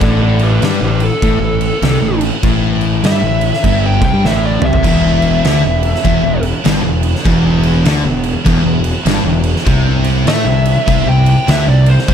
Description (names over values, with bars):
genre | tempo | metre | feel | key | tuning
stoner and doom metal | 99 BPM | 4/4 | swing 62% on 8ths | unclear | A4 = 440 Hz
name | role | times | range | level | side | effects
fuzz lead guitar | melody | 0.0-6.4, 10.3-12.1 s | G4 to G5 | -18 LUFS | right 1 dB | distortion, ping-pong delay
thick fuzz guitar | riff | 0.0-12.1 s | E2 to A3 | -16 LUFS | left 8 dB | distortion
thick fuzz guitar | riff | 0.0-12.1 s | E2 to A3 | -18 LUFS | right 8 dB | distortion
fuzz fingered electric bass | bass | 0.0-12.1 s | E1 to A2 | -17 LUFS | equal | overdrive
oversized low-tuned drum kit | drums | 0.0-12.1 s | crash cymbal, kick drum, snare drum, toms | -17 LUFS | right 1 dB | none
scooped high-gain guitar | riff | 4.8-12.1 s | E2 to A3 | -22 LUFS | equal | distortion
room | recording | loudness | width
light reverb, small room ambience | dark, warm production | -10 LUFS | side -8 dB against mid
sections
0.0-12.1 A section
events
lead electric guitar solo 0.0-12.1; drum fill 4.2-4.8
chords
0.0 A5; 4.8 Em; 9.7 Amadd11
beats
| 0.01 0.62 1.22 1.82 | 2.43 3.03 3.63 4.24 | 4.84 5.44 6.04 6.65 | 7.25 7.86 8.46 9.06 | 9.67 10.27 10.88 11.48 | 12.09